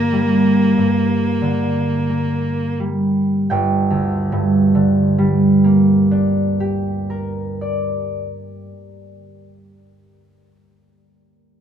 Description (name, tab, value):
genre	classical, romantic duo for cello and harp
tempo	41-47 BPM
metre	4/4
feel	rubato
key	G minor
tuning	A4 = 441 Hz
part	rich cello	melody	0.0-2.8 s	Bb3	-20 LUFS	left 1 dB	none
part	concert harp	accompaniment	0.0-10.5 s	G1 to G5	-16 LUFS	right 1 dB	none
room	light reverb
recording	none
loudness	-15 LUFS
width	side -8 dB against mid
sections	0.0-3.5 A section; 3.5-9.0 B section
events	slowing down 0.0-3.5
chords	0.0 Gm